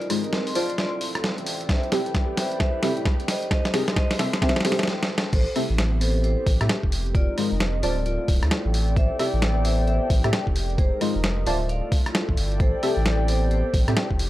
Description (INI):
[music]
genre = UK garage, two-step garage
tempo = 132 BPM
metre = 4/4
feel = swing 62% on 16ths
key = A minor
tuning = A4 = 439 Hz
[part]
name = vibraphone with hard mallets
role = melody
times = 0.0-13.7 s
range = F4 to F5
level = -32 LUFS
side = equal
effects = tape echo
[part]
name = warm analog pad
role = sustained chords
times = 0.0-14.3 s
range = Ab3 to B4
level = -35 LUFS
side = right 1 dB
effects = chorus, sidechain pumping
[part]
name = boom bap sampler-style drum kit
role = drums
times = 0.0-14.3 s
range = crash cymbal, hi-hat, rim click, snare drum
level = -26 LUFS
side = equal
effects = none
[part]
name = warbly tape-like pad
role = texture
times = 0.0-14.3 s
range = A4 to C6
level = -33 LUFS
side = left 2 dB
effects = chorus, built-in reverb, sidechain pumping
[part]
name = deep mellow chord stab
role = stabs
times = 0.1-13.9 s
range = Ab3 to A5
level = -27 LUFS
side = equal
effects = chorus, phaser
[part]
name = saturated sub bass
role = bass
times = 0.2-14.3 s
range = D1 to A2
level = -25 LUFS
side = equal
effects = tube saturation, sidechain pumping, high-pass filter
[part]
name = electronic kick drum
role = drums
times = 1.7-14.2 s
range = none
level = -22 LUFS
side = equal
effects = none
[sound]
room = light reverb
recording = dry, gritty hardware recording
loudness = -20 LUFS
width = side -15 dB against mid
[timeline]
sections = 0.0-5.3 A section; 5.3-14.3 B section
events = build-up 0.0-5.3; drum fill 0.0-4.9, 4.9-5.3; stop 4.9-5.3; drop 5.3-14.3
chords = 0.0 Fm7; 0.6 Dm7; 1.7 Am7; 3.3 Fm7; 4.2 Dm7; 5.3 Am7; 6.9 Fm7; 7.8 Dm7; 9.0 Am7; 10.6 Fm7; 11.5 Dm7; 12.6 Am7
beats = 0.33 0.78 1.24 | 1.69 2.15 2.60 3.06 | 3.51 3.96 4.42 4.87 | 5.33 5.78 6.24 6.69 | 7.15 7.60 8.06 8.51 | 8.96 9.42 9.87 10.33 | 10.78 11.24 11.69 12.15 | 12.60 13.06 13.51 13.96